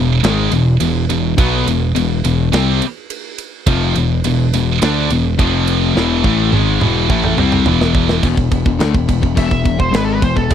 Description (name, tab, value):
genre	heavy metal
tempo	105 BPM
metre	4/4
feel	straight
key	E phrygian dominant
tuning	A4 = 440 Hz
part	heavy high-gain guitar	riff	0.0-8.2 s	E2 to D4	-18 LUFS	right 11 dB	distortion
part	sludgy distorted guitar	riff	0.0-10.5 s	E2 to D4	-17 LUFS	left 9 dB	overdrive
part	picked electric bass	bass	0.0-10.5 s	E1 to D2	-17 LUFS	right 1 dB	none
part	tight metal drum kit	drums	0.2-10.5 s	crash cymbal, kick drum, ride cymbal, snare drum, toms	-20 LUFS	right 2 dB	none
part	high-gain lead guitar	melody	9.4-10.5 s	A4 to E5	-20 LUFS	right 2 dB	distortion
room	little or no reverb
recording	dry, close 1970s-style studio recording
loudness	-12 LUFS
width	side -9 dB against mid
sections	0.0-8.2 A section; 8.2-10.5 B section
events	half time 0.0-8.2; drum fill 6.0-8.2; lead electric guitar solo 8.2-10.5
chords	0.0 E; 5.4 F5; 6.0 E